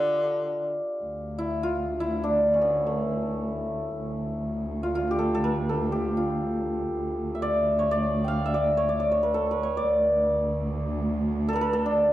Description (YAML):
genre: Persian modal ensemble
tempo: 81 BPM (dotted quarters)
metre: 6/8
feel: straight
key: D avaz esfahan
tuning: A4 = 441 Hz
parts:
  - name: santur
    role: melody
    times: 0.0-12.1 s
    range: A3 to G5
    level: -25 LUFS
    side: equal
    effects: slapback echo
  - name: bright tenor saxophone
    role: second line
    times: 0.0-0.8 s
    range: D3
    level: -34 LUFS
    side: left 5 dB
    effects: none
  - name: dark studio cello section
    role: drone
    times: 1.0-12.1 s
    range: D2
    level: -29 LUFS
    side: equal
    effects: none
room: light reverb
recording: dry, close 1970s-style studio recording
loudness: -24 LUFS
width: side -14 dB against mid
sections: 0.0-1.0 A section; 1.0-12.1 B section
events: none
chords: none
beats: 0.27 | 1.01 1.75 | 2.50 3.24 | 3.98 4.72 | 5.46 6.20 | 6.94 7.68 | 8.41 9.15 | 9.89 10.63 | 11.37 12.11